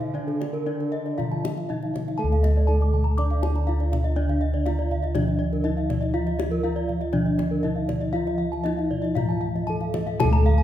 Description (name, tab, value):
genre	Balinese gamelan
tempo	120 BPM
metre	4/4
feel	straight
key	D pelog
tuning	A4 = 440 Hz
part	gamelan-type bronze metallophone	melody	0.0-10.6 s	D4 to D5	-30 LUFS	equal	none
part	clear bassoon	second line	0.0-1.8 s	D3 to F3-37c	-40 LUFS	right 3 dB	none
part	gamelan-type bronze metallophone	accompaniment	0.0-10.6 s	D3 to D4	-33 LUFS	right 1 dB	none
part	gamelan-type bronze metallophone	arpeggios	0.0-10.6 s	A4-30c to D6	-34 LUFS	right 3 dB	none
part	gamelan-type bossed gongs	bass	0.0-10.6 s	D2 to A4-30c	-24 LUFS	equal	none
part	kendang	percussion	0.0-10.3 s	none	-31 LUFS	left 3 dB	none
part	gamelan-type bronze metallophone	arpeggios	0.1-10.6 s	D5 to D6	-33 LUFS	left 3 dB	none
room	wet scoring stage reverb, RT60 1.6 s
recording	minimal, uncompressed stereo recording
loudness	-22 LUFS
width	side -12 dB against mid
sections	0.0-2.2 A section; 2.2-10.2 B section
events	none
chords	none